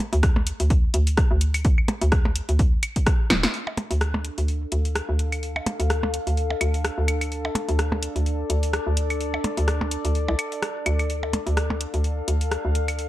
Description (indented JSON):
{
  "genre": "minimal techno",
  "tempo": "127 BPM",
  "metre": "4/4",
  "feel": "swing 56% on 16ths",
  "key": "D minor",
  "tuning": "A4 = 443 Hz",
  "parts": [
    { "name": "hollow knocking FM bass", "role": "bass", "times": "0.1-13.1 s", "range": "D1 to D2", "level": "-23 LUFS", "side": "equal", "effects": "sidechain pumping" },
    { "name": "punchy analog drum machine", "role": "drums", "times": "0.1-13.1 s", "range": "hi-hat, rim click, snare drum", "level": "-28 LUFS", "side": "equal", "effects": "none" },
    { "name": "electronic kick drum", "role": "drums", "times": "0.2-3.2 s", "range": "none", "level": "-20 LUFS", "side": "equal", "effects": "none" },
    { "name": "percussion blips and claves", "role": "percussion", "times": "0.4-13.0 s", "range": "none", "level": "-29 LUFS", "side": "equal", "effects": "digital delay" },
    { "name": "warbly tape-like pad", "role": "texture", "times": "3.5-13.1 s", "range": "D4 to F5", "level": "-30 LUFS", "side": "left 2 dB", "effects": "chorus, built-in reverb, sidechain pumping" }
  ],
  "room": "light reverb, digital ambience",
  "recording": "dark, warm production",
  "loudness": "-21 LUFS",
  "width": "side -15 dB against mid",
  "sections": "0.0-3.5 A section; 3.5-13.1 B section",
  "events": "drum fill 3.3",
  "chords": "0.0 N.C.; 3.5 Dm",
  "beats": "0.23 0.70 1.18 | 1.65 2.12 2.59 3.07 | 3.54 4.01 4.48 4.96 | 5.43 5.90 6.37 6.84 | 7.32 7.79 8.26 8.73 | 9.21 9.68 10.15 10.62 | 11.10 11.57 12.04 12.51 | 12.99"
}